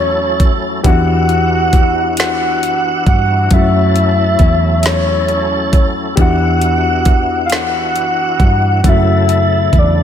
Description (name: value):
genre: slow six-eight R&B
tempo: 45 BPM (dotted quarters)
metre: 6/8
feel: straight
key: E dorian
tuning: A4 = 440 Hz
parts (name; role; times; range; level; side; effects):
- soft octave-layered synth lead; melody; 0.0-10.0 s; C#5 to F#5; -16 LUFS; left 1 dB; chorus
- overdriven reed electric piano; accompaniment; 0.0-10.0 s; C#3 to G4; -20 LUFS; left 8 dB; none
- tonewheel organ; sustained chords; 0.0-10.0 s; C#3 to F#5; -20 LUFS; right 1 dB; overdrive, chorus vibrato, slow rotary speaker
- vintage muted fingered electric bass; bass; 0.0-10.0 s; E2 to G2; -16 LUFS; right 1 dB; none
- smooth R&B drum kit; drums; 0.4-9.9 s; hi-hat, kick drum, snare drum; -14 LUFS; right 1 dB; none
room: light reverb, digital ambience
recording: none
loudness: -10 LUFS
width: side -9 dB against mid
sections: 0.0-10.0 A section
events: none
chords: 0.0 F#m7; 0.8 Em9; 3.5 F#m7; 6.2 Em9; 8.8 F#m7